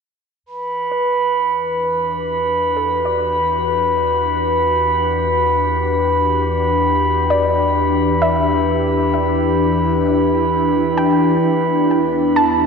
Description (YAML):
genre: ambient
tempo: 66 BPM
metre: 3/4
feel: straight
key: E minor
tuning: A4 = 439 Hz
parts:
  - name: warm sub bass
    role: bass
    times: 0.4-12.7 s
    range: E2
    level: -26 LUFS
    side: right 1 dB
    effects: none
  - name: glassy FM pad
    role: sustained chords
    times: 1.6-12.7 s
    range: E3 to G4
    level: -19 LUFS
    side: left 1 dB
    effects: ensemble chorus, built-in reverb, shimmer reverb
  - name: glass harmonica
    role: texture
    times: 0.5-12.7 s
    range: B4 to B5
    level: -17 LUFS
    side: equal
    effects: shimmer reverb
  - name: soft round pluck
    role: arpeggios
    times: 0.9-12.7 s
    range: A4 to A5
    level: -22 LUFS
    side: equal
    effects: analog chorus, ping-pong delay, shimmer reverb
room: wet lush hall reverb, RT60 2.6 s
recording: none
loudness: -14 LUFS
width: side -5 dB against mid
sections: 0.4-12.7 A section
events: fade-in on ambient pad 0.4-12.7; fade-in on synth pluck 0.4-12.7; fade-in on sub bass 0.4-12.7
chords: 0.4 Em9; 11.4 Bm7/E